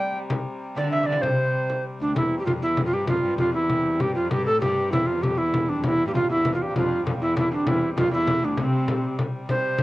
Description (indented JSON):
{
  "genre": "medieval dance",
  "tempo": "131 BPM (dotted quarters)",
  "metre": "6/8",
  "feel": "straight",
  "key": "C major",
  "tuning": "A4 = 439 Hz",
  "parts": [
    { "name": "mellow tenor recorder", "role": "melody", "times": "0.0-9.8 s", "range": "C4 to G5", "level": "-23 LUFS", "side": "right 1 dB", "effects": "cassette tape" },
    { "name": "lute", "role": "second line", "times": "0.0-1.8, 5.8-9.1 s", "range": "D2 to G3", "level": "-31 LUFS", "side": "right 2 dB", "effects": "cassette tape" },
    { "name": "rich viola da gamba", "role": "second line", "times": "0.0-9.8 s", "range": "D2 to G3", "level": "-30 LUFS", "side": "left 3 dB", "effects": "cassette tape" },
    { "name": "dark hurdy-gurdy", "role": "drone", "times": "0.0-9.8 s", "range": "C3 to G3", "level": "-35 LUFS", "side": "left 1 dB", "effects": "cassette tape" },
    { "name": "frame drum", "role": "percussion", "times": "0.3-9.8 s", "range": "none", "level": "-27 LUFS", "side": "left 1 dB", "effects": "none" }
  ],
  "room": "wet studio reverb, RT60 0.6 s",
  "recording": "home recording on cassette",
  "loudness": "-21 LUFS",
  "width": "side -17 dB against mid",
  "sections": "0.0-2.2 A section; 2.2-9.5 B section",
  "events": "none",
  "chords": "none"
}